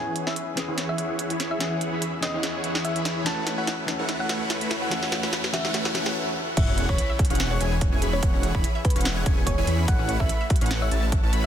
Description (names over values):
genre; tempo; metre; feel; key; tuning
future bass; 145 BPM; 4/4; swing 54% on 16ths, half-time; E major; A4 = 441 Hz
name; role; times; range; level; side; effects
thumb-piano-like synth pluck; melody; 0.0-11.0 s; B4 to A5; -33 LUFS; equal; chorus, sidechain pumping, digital delay
clear grand piano; accompaniment; 0.0-6.4 s; E3 to G#4; -34 LUFS; left 3 dB; sidechain pumping, dub echo
supersaw chords; riff; 0.0-11.5 s; E3 to B5; -29 LUFS; equal; sidechain pumping, low-pass filter
riser, swell and sub drop; sound effects; 1.5-8.2 s; none; -35 LUFS; equal; none
trap drum kit; drums; 0.2-11.4 s; crash cymbal, hi-hat, snare drum; -30 LUFS; right 1 dB; high-pass filter on snare, small room ambience, high-pass filter on toms, high-pass filter on hats, high-pass filter on cymbals
airy dreamy lead; arpeggios; 6.6-11.5 s; F#5 to B5; -34 LUFS; equal; chorus, cassette tape, sidechain pumping, dub echo
wide detuned saw bass; bass; 6.6-11.5 s; E1 to E2; -26 LUFS; equal; chorus, sidechain pumping
electronic kick drum; drums; 6.6-11.2 s; none; -23 LUFS; equal; overdrive, small room ambience
wide unison pluck; arpeggios; 6.7-11.5 s; C#4 to E5; -37 LUFS; left 3 dB; auto-pan, sidechain pumping, dub echo
room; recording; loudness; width
light reverb; dense, heavily limited modern master; -22 LUFS; side -10 dB against mid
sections
0.0-6.6 A section; 6.6-11.5 B section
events
build-up 0.0-6.6; drum fill 0.0-6.2; filter sweep on supersaw synth 0.0-6.6; swell 5.7-6.6; stop 6.2-6.6; drop 6.6-11.5; impact 6.6-8.2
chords
0.0 E6; 3.3 A6; 6.4 N.C.; 6.6 E6; 9.9 A6